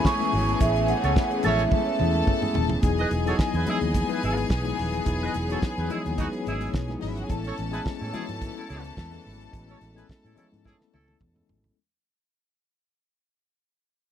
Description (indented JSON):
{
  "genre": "disco",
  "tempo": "108 BPM",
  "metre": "4/4",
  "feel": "straight",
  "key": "unclear",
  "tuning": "A4 = 441 Hz",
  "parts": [
    { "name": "vibraphone with soft mallets", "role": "melody", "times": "0.0-2.5 s", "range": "E5 to C#6", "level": "-27 LUFS", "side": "right 6 dB", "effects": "none" },
    { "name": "rich studio string section", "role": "second line", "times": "0.0-11.5 s", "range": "D#4 to A5", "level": "-33 LUFS", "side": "left 4 dB", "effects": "none" },
    { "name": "mellow tine electric piano", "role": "accompaniment", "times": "0.0-11.8 s", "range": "F#3 to B4", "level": "-30 LUFS", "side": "left 5 dB", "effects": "medium stereo tremolo" },
    { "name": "dark studio string section", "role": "sustained chords", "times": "0.0-11.7 s", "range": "E3 to D#5", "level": "-35 LUFS", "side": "equal", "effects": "none" },
    { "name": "damped 70s drum kit", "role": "drums", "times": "0.0-11.8 s", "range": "hi-hat, kick drum, snare drum, toms", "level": "-26 LUFS", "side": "right 1 dB", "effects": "none" },
    { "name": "congas", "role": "percussion", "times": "0.2-11.6 s", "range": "none", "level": "-36 LUFS", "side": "left 5 dB", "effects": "none" },
    { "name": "vintage muted fingered electric bass", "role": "bass", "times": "0.3-11.7 s", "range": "D#1 to A2", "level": "-28 LUFS", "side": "right 1 dB", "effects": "none" },
    { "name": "warm horn section", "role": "stabs", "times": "1.0-11.2 s", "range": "G#3 to D#5", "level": "-31 LUFS", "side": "right 3 dB", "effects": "none" }
  ],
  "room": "little or no reverb",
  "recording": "dry, close 1970s-style studio recording",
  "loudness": "-23 LUFS",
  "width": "side -9 dB against mid",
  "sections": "0.0-2.8 A section; 2.8-11.8 B section",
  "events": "band accent 0.6-2.8; drum fill 1.7-2.8, 10.6-11.8; fade-out 2.8-11.8",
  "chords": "0.0 Amaj7; 2.8 Emaj7; 7.3 Amaj7"
}